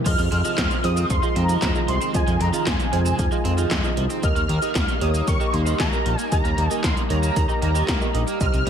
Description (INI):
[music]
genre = synthwave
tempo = 115 BPM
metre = 4/4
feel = straight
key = F minor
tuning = A4 = 440 Hz
[part]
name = lush unison pad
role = sustained chords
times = 0.0-8.7 s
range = C3 to Eb4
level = -29 LUFS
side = equal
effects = chorus, phaser, sidechain pumping, shimmer reverb
[part]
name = wide unison lead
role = melody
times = 0.1-8.7 s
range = Ab5 to F6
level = -27 LUFS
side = equal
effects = ensemble chorus, ping-pong delay, shimmer reverb
[part]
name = overdriven electric guitar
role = riff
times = 0.1-8.7 s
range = C3 to C4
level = -32 LUFS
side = right 4 dB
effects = analog chorus, ping-pong delay, shimmer reverb
[part]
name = tine electric piano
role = stabs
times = 0.1-8.7 s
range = F4 to G5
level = -29 LUFS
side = right 5 dB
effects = medium stereo tremolo, shimmer reverb
[part]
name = fat analog bass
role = bass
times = 0.1-8.7 s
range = Bb1 to F2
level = -23 LUFS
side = equal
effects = sidechain pumping
[part]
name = 80s electronic pad drums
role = drums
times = 0.1-8.7 s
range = crash cymbal, handclaps, hi-hat, shaker, snare drum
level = -28 LUFS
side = equal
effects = gated reverb
[part]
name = electronic kick drum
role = drums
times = 0.1-8.5 s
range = none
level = -25 LUFS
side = equal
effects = none
[sound]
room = light reverb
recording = none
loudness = -19 LUFS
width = side -8 dB against mid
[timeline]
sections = 0.1-8.7 A section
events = none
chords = 0.1 Fm7; 4.2 Eb